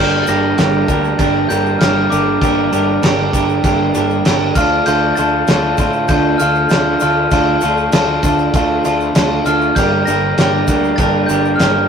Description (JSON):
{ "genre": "indie rock", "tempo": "98 BPM", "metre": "4/4", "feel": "straight", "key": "G minor", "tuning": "A4 = 439 Hz", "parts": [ { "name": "glockenspiel with soft plastic mallets", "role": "melody", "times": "0.0-11.9 s", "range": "D6 to Bb6", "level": "-20 LUFS", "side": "left 2 dB", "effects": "none" }, { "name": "electric guitar through a small old amp", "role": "riff", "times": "0.0-11.9 s", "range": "D3 to Bb4", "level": "-18 LUFS", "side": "left 2 dB", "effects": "none" }, { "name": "overdriven electric guitar", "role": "riff", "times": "0.0-11.9 s", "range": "G2 to G4", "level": "-17 LUFS", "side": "right 4 dB", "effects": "none" }, { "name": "fuzz picked electric bass", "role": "bass", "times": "0.0-11.8 s", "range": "G1 to A2", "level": "-22 LUFS", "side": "left 1 dB", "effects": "overdrive" }, { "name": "cloth-damped thuddy drum kit", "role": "drums", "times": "0.3-11.7 s", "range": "crash cymbal, kick drum, snare drum", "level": "-18 LUFS", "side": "equal", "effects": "none" }, { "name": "egg shaker", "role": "percussion", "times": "0.3-11.7 s", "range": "none", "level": "-35 LUFS", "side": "left 6 dB", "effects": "none" } ], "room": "moderate studio reverb, RT60 0.6 s", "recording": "rough rehearsal-room recording, tube saturation", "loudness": "-12 LUFS", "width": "side -6 dB against mid", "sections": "0.0-11.9 A section", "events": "none", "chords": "0.0 Gm; 4.6 Dm; 9.8 Gm" }